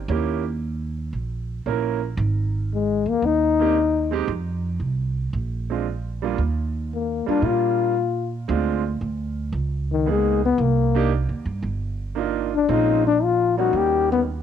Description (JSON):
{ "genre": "jazz, small-group swing and bop", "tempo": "114 BPM", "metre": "4/4", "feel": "swing 69% on 8ths", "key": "unclear", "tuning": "A4 = 440 Hz", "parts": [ { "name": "upright bass", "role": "bass", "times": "0.0-14.4 s", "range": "G1 to Bb2", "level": "-25 LUFS", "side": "right 2 dB", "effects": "none" }, { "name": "clear grand piano", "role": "accompaniment", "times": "0.1-14.2 s", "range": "G3 to Bb4", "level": "-26 LUFS", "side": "right 12 dB", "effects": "cassette tape" }, { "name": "mellow trombone", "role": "melody", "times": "2.7-14.2 s", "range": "Eb3 to G4", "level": "-20 LUFS", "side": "left 7 dB", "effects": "cassette tape" } ], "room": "studio reverb", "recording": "home recording on cassette", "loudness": "-20 LUFS", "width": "side -9 dB against mid", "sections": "0.0-14.4 A section", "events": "none", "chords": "0.1 Eb7b9; 2.2 Abmaj7; 4.3 F5; 5.3 Bb9; 6.4 Ebmaj9; 8.5 Dm7b5; 9.5 Dbsus2; 10.6 Cm7; 12.7 Bbm7; 13.7 Eb7" }